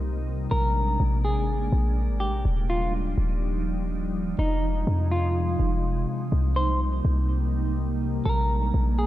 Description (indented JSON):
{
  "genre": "hip hop",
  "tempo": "124 BPM",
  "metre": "4/4",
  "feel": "half-time",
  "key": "C minor",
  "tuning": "A4 = 439 Hz",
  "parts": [
    { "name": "glassy FM pad", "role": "sustained chords", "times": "0.0-9.1 s", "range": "C3 to Eb4", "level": "-29 LUFS", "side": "right 1 dB", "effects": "ensemble chorus, built-in reverb" },
    { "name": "warm 808-style bass", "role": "bass", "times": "0.0-9.1 s", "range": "Eb1 to F2", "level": "-24 LUFS", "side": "equal", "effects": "none" },
    { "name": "semi-hollow electric guitar", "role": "melody", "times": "0.5-9.1 s", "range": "Eb4 to C5", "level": "-30 LUFS", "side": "equal", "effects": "harmonic tremolo, low-pass filter, tape echo" }
  ],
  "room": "light reverb, digital ambience",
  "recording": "none",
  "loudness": "-23 LUFS",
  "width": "side -14 dB against mid",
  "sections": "0.0-9.1 A section",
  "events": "none",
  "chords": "0.0 Cm7; 0.5 Bb9; 2.5 Ebmaj9; 4.4 Fm7; 6.3 Cm7; 8.3 Bb9"
}